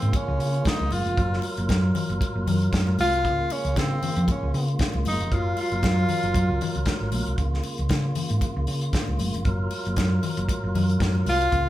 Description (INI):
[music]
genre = disco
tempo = 116 BPM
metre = 4/4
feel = swing 56% on 16ths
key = unclear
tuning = A4 = 440 Hz
[part]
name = breathy tenor saxophone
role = melody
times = 0.0-7.1, 11.3-11.7 s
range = C4 to F4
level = -26 LUFS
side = equal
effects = none
[part]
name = tonewheel organ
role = sustained chords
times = 0.0-11.7 s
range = Db3 to Bb4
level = -32 LUFS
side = equal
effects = overdrive, fast rotary speaker
[part]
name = hollow-body short-scale fingered electric bass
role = bass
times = 0.0-11.7 s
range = F1 to Db3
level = -24 LUFS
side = equal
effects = none
[part]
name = warm soul drum kit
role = drums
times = 0.0-11.7 s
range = hi-hat, kick drum, snare drum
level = -28 LUFS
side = equal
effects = none
[part]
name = congas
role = percussion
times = 0.1-11.4 s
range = none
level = -33 LUFS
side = left 5 dB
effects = none
[sound]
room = moderate large studio reverb, RT60 0.9 s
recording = band playing live in one room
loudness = -22 LUFS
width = side -14 dB against mid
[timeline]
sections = 0.0-11.7 A section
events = none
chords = 0.0 Db6; 1.2 Gbmaj7; 3.2 Db6; 5.3 Gbmaj7; 7.4 Db6; 9.5 Gbmaj7